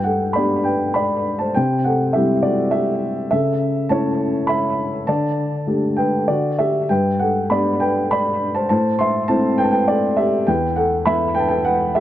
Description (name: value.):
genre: classical, lyrical solo piano.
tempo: 101 BPM.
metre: 3/4.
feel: rubato.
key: G major.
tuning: A4 = 441 Hz.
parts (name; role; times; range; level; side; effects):
dark upright piano; solo; 0.0-12.0 s; E2 to C6; -16 LUFS; equal; analog delay.
room: moderate spring reverb, RT60 1.6 s, small room ambience.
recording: dark, warm production.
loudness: -16 LUFS.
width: side -12 dB against mid.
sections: 0.0-12.0 A section.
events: none.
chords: 0.0 G; 1.6 C; 3.3 A/C#; 5.1 Dsus4; 6.3 Dadd9; 6.9 G; 8.7 Am; 10.5 E5.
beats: 0.36 0.96 | 1.56 2.15 2.74 | 3.33 3.91 4.49 | 5.08 5.68 6.29 | 6.90 7.51 8.11 | 8.70 9.29 9.88 | 10.48 11.07 11.66.